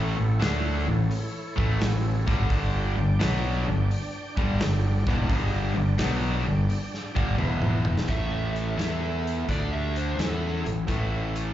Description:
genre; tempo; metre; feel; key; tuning
blues rock power trio and southern rock; 86 BPM; 4/4; swing 68% on 8ths; A mixolydian; A4 = 439 Hz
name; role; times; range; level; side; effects
overdriven tonewheel organ; sustained chords; 0.0-11.5 s; A3 to G5; -38 LUFS; right 2 dB; slow rotary speaker, chorus vibrato
cranked stack guitar; riff; 0.0-11.5 s; E2 to E4; -28 LUFS; left 1 dB; overdrive
fuzz fingered electric bass; bass; 0.0-11.5 s; E1 to E2; -27 LUFS; equal; overdrive
big rock drum kit; drums; 0.4-11.5 s; hi-hat, kick drum, snare drum, toms; -30 LUFS; equal; none
overdriven slide guitar; melody; 8.1-10.7 s; A4 to E5; -35 LUFS; right 4 dB; slapback echo
bluesy overdriven lead guitar; second line; 8.1-10.6 s; C#4 to A4; -40 LUFS; right 2 dB; distortion, slapback echo
room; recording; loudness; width
small room ambience; live gig heard through the venue's PA, club reverb, nothing above 7.6 kHz; -23 LUFS; side -12 dB against mid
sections
0.0-8.1 A section; 8.1-11.5 B section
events
drum fill 7.4-8.1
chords
0.0 A; 2.5 G5; 7.4 E5; 8.1 A; 8.8 E5; 9.5 D5; 10.2 A

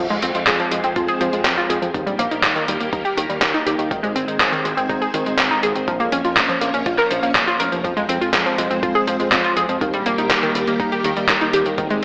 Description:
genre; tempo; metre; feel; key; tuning
italo disco; 122 BPM; 4/4; straight; unclear; A4 = 441 Hz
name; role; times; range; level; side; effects
string machine, full ensemble; sustained chords; 0.0-12.0 s; Eb3 to Db5; -24 LUFS; equal; ensemble chorus
analog pluck; arpeggios; 0.0-12.0 s; Eb3 to Bb4; -20 LUFS; equal; chorus, tape echo
fingered electric bass with an envelope filter; bass; 0.0-12.0 s; F1 to F2; -27 LUFS; equal; tape echo
dusty soul sampler-style drum kit; drums; 0.1-12.0 s; handclaps, hi-hat; -20 LUFS; equal; overdrive, gated reverb
electronic kick drum; drums; 0.5-11.9 s; none; -28 LUFS; equal; overdrive
room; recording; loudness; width
moderate lush hall reverb, RT60 1.6 s; AM radio sound; -16 LUFS; side -40 dB against mid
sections
0.0-12.0 A section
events
none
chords
0.0 Fm; 1.9 Eb; 3.9 Ab; 5.9 Bbm; 7.8 Fm; 9.8 Eb

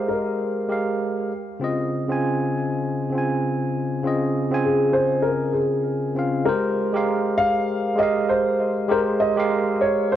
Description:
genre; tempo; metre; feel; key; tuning
chillout; 99 BPM; 4/4; swing 55% on 16ths; unclear; A4 = 441 Hz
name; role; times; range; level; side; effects
dark concert grand piano; melody; 0.0-10.2 s; Ab4 to F5; -22 LUFS; equal; digital delay
bright tine electric piano; accompaniment; 0.0-10.2 s; Db3 to Ab5; -22 LUFS; equal; auto-pan
room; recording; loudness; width
moderate concert hall reverb, RT60 2.1 s; worn, warbling old tape, cassette tape, warbly pitch drift; -20 LUFS; side -11 dB against mid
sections
0.0-6.5 A section; 6.5-10.2 B section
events
none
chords
0.0 Abmaj9; 1.3 Dbmaj9; 6.5 Abmaj9

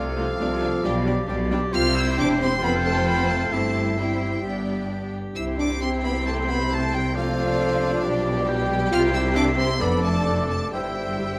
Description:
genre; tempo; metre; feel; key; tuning
quick classical-period movement for symphony orchestra; 134 BPM; 4/4; straight; C major; A4 = 439 Hz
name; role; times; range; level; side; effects
clear chamber violin section; melody; 0.0-11.4 s; F5 to F6; -34 LUFS; equal; none
clear clarinet; second line; 0.0-11.4 s; E4 to C5; -35 LUFS; equal; none
rich chamber violin section; second line; 0.0-11.4 s; D4 to D5; -34 LUFS; equal; none
silver concert flute; second line; 0.0-11.4 s; D6 to C7; -34 LUFS; equal; none
warm oboe; second line; 0.0-11.4 s; C5 to G5; -33 LUFS; equal; none
rich chamber viola section; accompaniment; 0.0-11.3 s; E3 to F4; -34 LUFS; equal; none
mellow French horn section; sustained chords; 0.0-11.4 s; F3 to F4; -30 LUFS; equal; none
clear chamber double bass section; bass; 0.0-11.4 s; E1 to C2; -30 LUFS; equal; none
warm chamber cello section; bass; 0.0-11.4 s; E2 to C3; -32 LUFS; equal; none
room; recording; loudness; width
moderate recital hall reverb, RT60 1.6 s; close, detailed microphones; -23 LUFS; mono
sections
0.0-11.4 A section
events
none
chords
0.0 Dm7/C; 0.8 G7/B; 1.7 C; 2.6 F; 3.5 C/G; 4.4 G; 5.4 C; 7.1 Dm7/C; 8.0 G7/B; 8.9 C; 9.8 Dm/F; 10.7 C/G

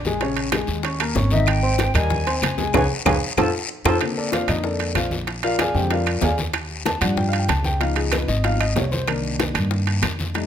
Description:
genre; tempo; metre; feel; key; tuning
Afro-Cuban jazz; 189 BPM; 4/4; straight; Bb major from 4.0 s; A4 = 439 Hz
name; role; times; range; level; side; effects
upright bass; bass; 0.0-10.5 s; Ab1 to G2; -23 LUFS; equal; none
guiro; percussion; 0.0-10.5 s; none; -32 LUFS; left 6 dB; none
warm concert grand piano; accompaniment; 0.1-10.5 s; Db3 to Db6; -24 LUFS; left 2 dB; none
bongos; percussion; 0.1-10.5 s; none; -30 LUFS; left 8 dB; none
congas; percussion; 0.1-10.5 s; none; -29 LUFS; equal; none
timbales; percussion; 0.2-10.5 s; none; -27 LUFS; right 10 dB; none
claves; percussion; 0.5-10.2 s; none; -32 LUFS; left 5 dB; none
mellow concert flute; melody; 1.3-4.0 s; Fb5 to A5; -27 LUFS; equal; none
room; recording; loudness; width
light reverb; close, detailed microphones; -19 LUFS; side -9 dB against mid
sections
0.0-4.0 A section; 4.0-10.5 B section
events
drum fill 2.7-4.0; band accent 2.7-4.0; grand piano solo 4.0-10.5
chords
0.2 Bbm7; 0.8 Eb5; 1.5 Abmaj9; 2.7 Db5; 3.4 F; 4.0 Bbmaj9; 5.3 Bb7; 6.5 Ebmaj7; 7.8 Db9; 9.1 Cm7

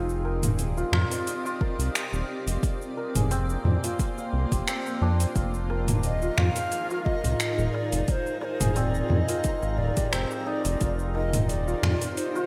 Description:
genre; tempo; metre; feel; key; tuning
organic downtempo; 88 BPM; 4/4; swing 54% on 16ths; F dorian; A4 = 440 Hz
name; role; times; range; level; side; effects
granular cloud pad; sustained chords; 0.0-12.5 s; Bb3 to Eb5; -38 LUFS; equal; built-in reverb, sidechain pumping
santur; arpeggios; 0.0-12.5 s; C4 to F5; -34 LUFS; equal; digital delay
round analog bass; bass; 0.0-12.0 s; Eb1 to F2; -29 LUFS; equal; none
deep house drum kit; drums; 0.1-12.5 s; finger snaps, hi-hat, shaker, toms; -31 LUFS; equal; overdrive, gated reverb
electronic kick drum; drums; 1.6-11.0 s; none; -30 LUFS; equal; overdrive
twinkling granular texture; texture; 6.1-12.5 s; Bb4; -46 LUFS; equal; built-in reverb
darbuka; percussion; 5.7-12.5 s; none; -36 LUFS; equal; none
breathy bright low ney; melody; 6.0-12.5 s; C5 to F5; -34 LUFS; equal; digital delay
room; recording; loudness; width
moderate lush hall reverb, RT60 2.4 s; bright 1980s-style digital production; -27 LUFS; mono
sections
0.0-12.5 A section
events
none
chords
0.0 Cm7; 2.6 Bb/F; 5.4 Fm7; 10.8 Cm7

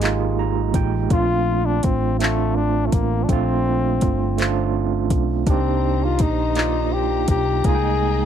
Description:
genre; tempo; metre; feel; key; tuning
slow six-eight R&B; 55 BPM (dotted quarters); 6/8; straight; Bb major; A4 = 440 Hz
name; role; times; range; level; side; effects
breathy flugelhorn; melody; 0.0-8.3 s; Ab3 to Ab4; -24 LUFS; left 7 dB; none
overdriven tine electric piano; accompaniment; 0.0-8.3 s; Ab3 to Bb5; -23 LUFS; right 15 dB; fast tremolo
mellow fretless electric bass; bass; 0.0-8.3 s; G1 to C2; -23 LUFS; left 1 dB; analog chorus
smooth R&B drum kit; drums; 0.0-7.8 s; handclaps, hi-hat, kick drum; -21 LUFS; left 1 dB; none
warm studio string section; sustained chords; 5.5-8.3 s; Eb3 to Bb5; -33 LUFS; left 2 dB; none
room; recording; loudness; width
little or no reverb; dry, close 1970s-style studio recording; -18 LUFS; side -9 dB against mid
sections
0.0-8.3 A section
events
tine electric piano fill 0.0-1.1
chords
0.0 Fm11; 1.1 Bbmaj9; 5.5 Cm7; 7.7 Abmaj9

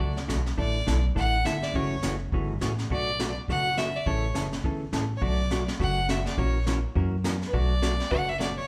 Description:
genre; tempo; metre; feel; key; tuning
country, western swing; 207 BPM; 4/4; swing 60% on 8ths; unclear; A4 = 439 Hz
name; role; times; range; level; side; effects
clear fiddle; melody; 0.0-8.7 s; B4 to F#5; -32 LUFS; equal; none
hollow-body jazz guitar; accompaniment; 0.0-8.5 s; B2 to A#4; -35 LUFS; equal; none
upright bass; bass; 0.0-8.6 s; F#1 to F#2; -30 LUFS; equal; none
jazz brush drum kit; drums; 0.0-8.7 s; brushed snare drum, hi-hat, kick drum, snare drum; -35 LUFS; equal; none
room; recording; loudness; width
moderate large studio reverb, RT60 1.2 s; band playing live in one room; -27 LUFS; mono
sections
0.6-8.7 A section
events
none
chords
0.0 D; 0.6 Asus4; 1.7 F#m7; 2.9 Bm7; 4.1 A; 5.2 Bm7; 6.4 F#7/A#; 7.5 Bm7

